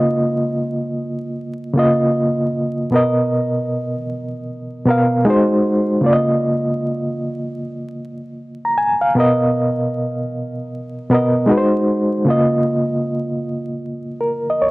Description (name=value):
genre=hip hop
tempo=77 BPM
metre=4/4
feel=swing 66% on 16ths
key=Db mixolydian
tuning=A4 = 441 Hz
part: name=reed electric piano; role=solo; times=0.0-14.7 s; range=Cb3 to Bb5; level=-16 LUFS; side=equal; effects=fast tremolo, cassette tape, low-pass filter
room=light reverb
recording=dry, gritty hardware recording, vinyl crackle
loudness=-16 LUFS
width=side -21 dB against mid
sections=0.0-14.7 A section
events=none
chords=0.0 Db69; 2.9 Cbmaj7; 5.3 Ab7; 6.0 Db69; 9.2 Cbmaj7; 11.5 Ab7; 12.3 Db69